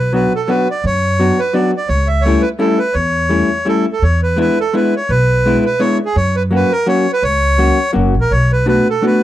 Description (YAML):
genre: musette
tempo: 169 BPM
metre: 3/4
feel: swing 55% on 8ths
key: B minor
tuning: A4 = 443 Hz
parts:
  - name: accordion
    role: melody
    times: 0.0-9.2 s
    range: G#4 to E5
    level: -16 LUFS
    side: right 2 dB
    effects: none
  - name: upright bass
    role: bass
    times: 0.0-8.8 s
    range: F#1 to F#2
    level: -16 LUFS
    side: equal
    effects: none
  - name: vintage hollow-body jazz guitar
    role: accompaniment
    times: 0.1-9.2 s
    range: F#3 to F#4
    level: -15 LUFS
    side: left 2 dB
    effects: none
room: small room ambience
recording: dry, close 1970s-style studio recording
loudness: -12 LUFS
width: side -13 dB against mid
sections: 0.0-9.2 A section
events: none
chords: 0.0 Bm; 1.9 A7/C#; 4.0 E7; 6.1 F#; 8.3 Bm7